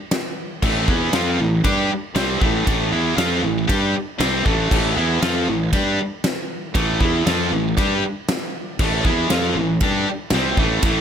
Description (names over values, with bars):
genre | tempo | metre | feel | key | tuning
heavy metal | 118 BPM | 4/4 | straight | A minor | A4 = 440 Hz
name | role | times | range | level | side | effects
big rock drum kit | drums | 0.1-11.0 s | crash cymbal, kick drum, ride cymbal, snare drum | -23 LUFS | equal | none
high-gain distorted guitar | riff | 0.6-11.0 s | A2 to G4 | -20 LUFS | equal | distortion
fuzz fingered electric bass | bass | 0.6-11.0 s | A1 to G2 | -23 LUFS | equal | overdrive
room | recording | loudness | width
small room ambience | none | -17 LUFS | side -8 dB against mid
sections
0.0-11.0 A section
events
none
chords
0.0 Am